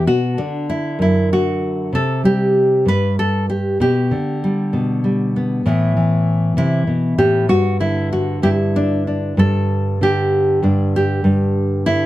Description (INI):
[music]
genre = folk, solo fingerstyle acoustic guitar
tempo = 64 BPM (dotted quarters)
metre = 6/8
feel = rubato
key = G major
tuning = A4 = 440 Hz
[part]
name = nylon-string guitar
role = solo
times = 0.0-12.1 s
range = F#2 to B4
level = -15 LUFS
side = equal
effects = none
[sound]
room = light reverb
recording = none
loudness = -15 LUFS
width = side -15 dB against mid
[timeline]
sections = 0.0-9.4 A section; 9.4-12.1 B section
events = none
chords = 0.1 Bm; 1.9 C5; 3.8 G/B; 5.7 Amadd9; 7.5 G5; 9.4 Gsus2